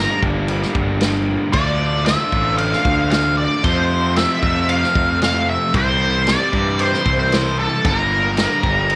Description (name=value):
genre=classic rock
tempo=114 BPM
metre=4/4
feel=straight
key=G dorian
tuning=A4 = 440 Hz
part: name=octave-fuzz lead guitar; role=melody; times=0.0-9.0 s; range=A4 to F5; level=-22 LUFS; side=equal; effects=wah, distortion
part: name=distorted electric guitar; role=riff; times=0.0-9.0 s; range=F2 to G4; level=-25 LUFS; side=equal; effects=distortion
part: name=fuzz picked electric bass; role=bass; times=0.0-9.0 s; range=G1 to G2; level=-24 LUFS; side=equal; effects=overdrive
part: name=vintage drum kit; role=drums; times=0.2-9.0 s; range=crash cymbal, kick drum, snare drum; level=-25 LUFS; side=equal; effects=none
room=small room ambience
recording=none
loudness=-18 LUFS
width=mono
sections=0.0-9.0 A section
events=none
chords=0.0 Gm; 1.5 Dm; 3.6 F; 5.7 C; 7.8 Gm